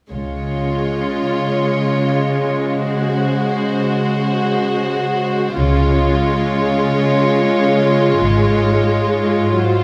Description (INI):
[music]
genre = classical, slow romantic movement for string orchestra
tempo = 44 BPM (dotted quarters)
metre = 6/8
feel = uneven beats, rubato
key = Db major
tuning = A4 = 441 Hz
[part]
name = warm chamber violin section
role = melody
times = 0.1-9.8 s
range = C5 to Db5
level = -26 LUFS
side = equal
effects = none
[part]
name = warm studio violin section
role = second line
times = 0.1-9.8 s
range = F4 to Gb4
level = -23 LUFS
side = equal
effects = none
[part]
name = warm chamber viola section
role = accompaniment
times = 0.1-9.8 s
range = Gb3 to Ab3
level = -22 LUFS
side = equal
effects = none
[part]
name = dark chamber cello section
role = bass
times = 0.1-9.8 s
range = Ab2 to Db3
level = -22 LUFS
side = equal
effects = none
[part]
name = warm chamber double bass section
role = bass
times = 0.1-1.0, 5.6-9.1 s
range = Ab1 to Db2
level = -25 LUFS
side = equal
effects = none
[sound]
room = wet scoring stage reverb, RT60 2.0 s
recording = heard from further back in the room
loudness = -17 LUFS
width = mono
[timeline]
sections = 0.1-9.8 A section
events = none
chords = 0.1 Db; 8.2 Ab5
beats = | 0.12 1.51 | 2.87 4.26 | 5.57 6.88 | 8.21 9.61